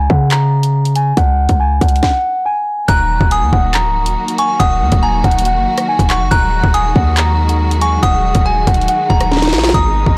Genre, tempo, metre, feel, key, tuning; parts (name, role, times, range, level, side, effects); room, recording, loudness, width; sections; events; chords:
hip hop, drill; 140 BPM; 4/4; half-time; Eb minor; A4 = 440 Hz
celesta; melody; 0.0-10.1 s; Gb5 to Bb5; -19 LUFS; equal; low-pass filter
hard-hitting 808-style bass; bass; 0.0-10.2 s; Db1 to Db3; -17 LUFS; equal
drill drum kit; drums; 0.1-10.2 s; handclaps, hi-hat, kick drum, rim click, snare drum; -18 LUFS; equal
delicate synth tine bell; second line; 2.9-10.1 s; Ab5 to Gb6; -24 LUFS; equal; chorus, delay
rich symphonic string section; sustained chords; 2.9-10.2 s; Cb3 to Gb4; -24 LUFS; equal
little or no reverb; blown-out, overdriven recording, overdrive; -14 LUFS; mono
0.0-2.9 A section; 2.9-10.2 B section
stop 2.0-2.9; drum fill 9.3-9.7
0.0 Db5; 2.9 Ebm